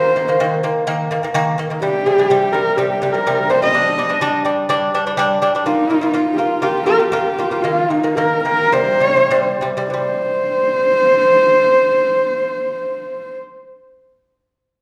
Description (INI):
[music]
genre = mongolian traditional, Mongolian folk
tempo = 94-126 BPM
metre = 4/4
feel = straight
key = C minor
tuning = A4 = 440 Hz
[part]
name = warm horsehead fiddle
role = melody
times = 0.0-13.3 s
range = Eb4 to Eb5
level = -17 LUFS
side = equal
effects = none
[part]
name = lute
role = arpeggios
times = 0.0-13.4 s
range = C3 to F4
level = -21 LUFS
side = equal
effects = none
[sound]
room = wet recital hall reverb, RT60 1.4 s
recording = heard from further back in the room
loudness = -16 LUFS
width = mono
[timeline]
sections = 0.0-9.9 A section; 9.9-14.8 B section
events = slowing down 5.7-9.9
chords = 0.0 Eb5; 1.8 C5; 3.7 G5; 5.7 Bb5; 7.6 Eb5; 8.7 C5